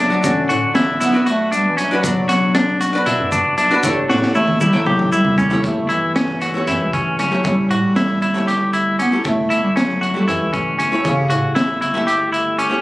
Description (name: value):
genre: progressive instrumental, band music in an uneven meter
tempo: 233 BPM (eighths)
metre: 7/8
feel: straight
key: A mixolydian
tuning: A4 = 440 Hz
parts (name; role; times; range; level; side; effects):
- warm bass clarinet; melody; 0.0-11.6 s; C#3 to C#4; -20 LUFS; equal; digital delay
- archtop guitar, miked and amplified; accompaniment; 0.0-12.8 s; D3 to G5; -23 LUFS; equal; double-tracked left and right
- semi-hollow electric guitar; arpeggios; 0.0-12.8 s; C#4 to G4; -18 LUFS; left 1 dB; digital delay
- rubbery square bass; bass; 0.0-12.7 s; G1 to B2; -28 LUFS; equal; none
- crunchy breakbeat drum kit; drums; 0.2-12.7 s; hi-hat, kick drum, snare drum, toms; -23 LUFS; equal; none
- tube shaker; percussion; 0.2-5.5 s; none; -32 LUFS; equal; none
room: light reverb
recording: recorded on a phone in the room, club reverb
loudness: -14 LUFS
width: side -18 dB against mid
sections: 0.0-5.6 A section; 5.6-12.8 B section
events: bass clarinet solo 0.0-5.6; drum fill 4.1-5.6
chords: 0.0 D6/A; 3.8 A7